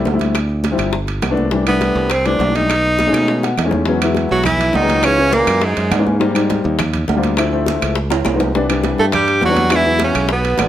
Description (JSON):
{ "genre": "Afro-Cuban jazz", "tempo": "205 BPM", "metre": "4/4", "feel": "straight", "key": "unclear", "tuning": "A4 = 441 Hz", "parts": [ { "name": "warm upright piano", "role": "accompaniment", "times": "0.0-10.7 s", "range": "D#3 to F#5", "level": "-18 LUFS", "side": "left 3 dB", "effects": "none" }, { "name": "modern bright fingered electric bass", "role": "bass", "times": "0.0-10.7 s", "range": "G1 to B2", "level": "-20 LUFS", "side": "right 1 dB", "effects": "none" }, { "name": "bongos", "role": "percussion", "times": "0.1-10.7 s", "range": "none", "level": "-25 LUFS", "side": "left 5 dB", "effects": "none" }, { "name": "congas", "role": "percussion", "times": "0.1-10.7 s", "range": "none", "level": "-26 LUFS", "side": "right 1 dB", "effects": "none" }, { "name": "timbales", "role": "percussion", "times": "0.1-10.7 s", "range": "none", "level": "-25 LUFS", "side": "right 8 dB", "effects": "none" }, { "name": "claves", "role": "percussion", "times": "0.4-10.7 s", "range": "none", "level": "-27 LUFS", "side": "left 1 dB", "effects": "none" }, { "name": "clear tenor saxophone", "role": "melody", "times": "1.7-6.1, 9.0-10.7 s", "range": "G#3 to A4", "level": "-16 LUFS", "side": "right 1 dB", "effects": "none" }, { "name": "warm baritone saxophone", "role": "second line", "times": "4.3-6.1, 9.0-10.7 s", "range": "G#2 to A3", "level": "-22 LUFS", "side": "right 4 dB", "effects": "none" } ], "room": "light reverb", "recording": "none", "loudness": "-13 LUFS", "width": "side -12 dB against mid", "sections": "0.0-3.9 A section; 3.9-10.7 B section", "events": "drum fill 3.0-3.9, 8.1-8.5; upright piano fill 3.3-3.9", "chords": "0.3 Dm11; 0.9 G7; 1.5 C69; 2.7 B13; 3.9 E69; 5.0 C#m7; 5.6 F#9; 6.2 G#maj9; 7.4 Dm7; 8.0 C#9; 8.5 Cmaj9; 9.7 Eadd9", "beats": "0.06 | 0.35 0.64 0.93 1.23 | 1.52 1.81 2.11 2.40 | 2.69 2.99 3.28 3.57 | 3.87 4.16 4.45 4.74 | 5.04 5.33 5.62 5.92 | 6.21 6.50 6.79 7.08 | 7.38 7.67 7.96 8.25 | 8.55 8.84 9.13 9.42 | 9.71 10.01 10.30 10.59" }